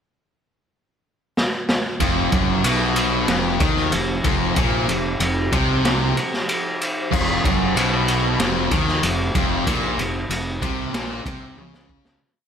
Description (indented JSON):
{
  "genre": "hard rock",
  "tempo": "94 BPM",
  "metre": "4/4",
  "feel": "straight",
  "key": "unclear",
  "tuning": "A4 = 440 Hz",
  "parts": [
    { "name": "raw garage drum kit", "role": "drums", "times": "1.4-12.2 s", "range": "crash cymbal, kick drum, ride cymbal, snare drum, toms", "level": "-21 LUFS", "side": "equal", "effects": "none" },
    { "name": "dark analog pad", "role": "sustained chords", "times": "2.6-12.2 s", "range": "F3 to C5", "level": "-33 LUFS", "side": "equal", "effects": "chorus, phaser" },
    { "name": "distorted electric guitar", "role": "riff", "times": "2.0-12.2 s", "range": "F2 to Eb3", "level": "-24 LUFS", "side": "left 10 dB", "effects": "overdrive" },
    { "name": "sludgy distorted guitar", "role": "riff", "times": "2.0-12.2 s", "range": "F2 to Eb3", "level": "-24 LUFS", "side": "right 9 dB", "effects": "overdrive" },
    { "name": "fuzz fingered electric bass", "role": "bass", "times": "2.0-12.2 s", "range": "F1 to Eb2", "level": "-27 LUFS", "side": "equal", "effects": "overdrive" }
  ],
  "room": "moderate scoring stage reverb, RT60 1.7 s, studio reverb",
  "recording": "big arena sound",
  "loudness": "-18 LUFS",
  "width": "side -8 dB against mid",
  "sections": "0.0-2.0 pickup bar; 2.0-12.2 riff",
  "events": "drum fill 1.4-2.0, 11.6-12.2; fade-out 9.7-12.2",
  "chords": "0.0 N.C.; 2.0 F5"
}